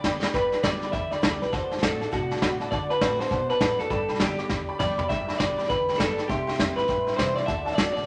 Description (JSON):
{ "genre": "rockabilly", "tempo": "202 BPM", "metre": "4/4", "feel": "swing 62% on 8ths", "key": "G major", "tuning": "A4 = 440 Hz", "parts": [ { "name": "electric guitar through a small old amp", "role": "melody", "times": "0.0-8.0 s", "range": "F#4 to E5", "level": "-29 LUFS", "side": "equal", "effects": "none" }, { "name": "honky-tonk upright piano", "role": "accompaniment", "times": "0.0-8.0 s", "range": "D5 to D6", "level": "-35 LUFS", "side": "equal", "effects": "none" }, { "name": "picked steel-string acoustic guitar", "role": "accompaniment", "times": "0.0-8.1 s", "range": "G2 to G4", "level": "-38 LUFS", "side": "equal", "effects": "none" }, { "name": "upright bass", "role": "bass", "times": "0.0-8.1 s", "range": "G1 to C3", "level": "-40 LUFS", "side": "equal", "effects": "none" }, { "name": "vintage brush drum kit", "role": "drums", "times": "0.0-8.1 s", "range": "hi-hat, kick drum, snare drum, toms", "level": "-30 LUFS", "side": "equal", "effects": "none" } ], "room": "moderate large studio reverb, RT60 1.2 s", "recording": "nothing above 10.4 kHz", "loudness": "-25 LUFS", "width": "mono", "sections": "0.0-5.1 A section; 5.1-8.1 B section", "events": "drum fill 0.0-0.3, 4.5-5.1", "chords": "0.0 G; 1.5 D7; 3.9 G; 6.3 C; 7.5 D7" }